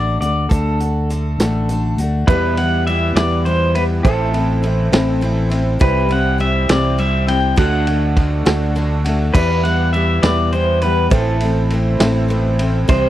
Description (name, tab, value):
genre	folk rock and heartland rock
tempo	68 BPM (dotted quarters)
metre	6/8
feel	straight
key	E minor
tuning	A4 = 442 Hz
part	pedal steel guitar	melody	0.0-13.1 s	A4 to G5	-20 LUFS	equal	slapback echo
part	picked steel-string acoustic guitar	accompaniment	0.0-13.1 s	E2 to F#4	-22 LUFS	left 4 dB	none
part	fingered electric bass	bass	0.0-13.1 s	A1 to E2	-18 LUFS	equal	none
part	vintage drum kit	drums	0.2-13.0 s	crash cymbal, hi-hat, kick drum, ride cymbal, snare drum	-21 LUFS	equal	none
part	dark upright piano	accompaniment	2.3-13.1 s	D4 to C5	-26 LUFS	right 9 dB	none
part	accordion	sustained chords	2.3-13.1 s	A3 to C5	-27 LUFS	right 3 dB	light tremolo tuning
room	little or no reverb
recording	dry, close 1970s-style studio recording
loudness	-14 LUFS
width	side -13 dB against mid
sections	0.0-2.3 A section; 2.3-13.1 B section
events	none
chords	0.0 D; 2.3 Em; 4.0 Am; 5.8 C; 7.6 D; 9.3 Em; 11.1 Am